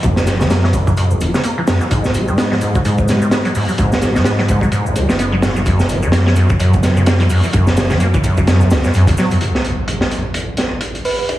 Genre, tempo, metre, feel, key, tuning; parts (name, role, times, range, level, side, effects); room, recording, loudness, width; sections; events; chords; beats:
breakbeat, breaks; 128 BPM; 4/4; swing 57% on 16ths; A4 = 440 Hz
deep acid bass; riff; 0.0-9.4 s; F#1 to B3; -17 LUFS; equal; lush chorus, cassette tape, digital delay
dark detuned saw bass; bass; 0.0-8.8 s; E1 to G#2; -16 LUFS; equal
crunchy breakbeat drum kit; drums; 0.0-11.4 s; hi-hat, kick drum, snare drum; -16 LUFS; equal; high-pass filter on kick, high-pass filter on hats, high-pass filter on snare, high-pass filter on room
shaker; drums; 0.0-9.4 s; -36 LUFS; left 1 dB; overdrive
impact; sound effects; 9.4-11.3 s; -22 LUFS; equal
bell-like FM electric piano; melody; 11.1-11.2 s; B4; -18 LUFS; right 3 dB; chorus, telephone sound
moderate lush hall reverb, RT60 1.8 s; heavily compressed radio sound, multiband compression, vinyl crackle, small room reverb; -12 LUFS; side -14 dB against mid
0.0-9.4 A section; 9.4-11.4 B section
impact 9.4-11.3
0.0 F#7(no3); 1.9 N.C.
| 0.04 0.51 0.97 1.44 | 1.91 2.38 2.85 3.32 | 3.79 4.25 4.72 5.19 | 5.66 6.13 6.60 7.07 | 7.54 8.01 8.47 8.94 | 9.41 9.88 10.35 10.82 | 11.29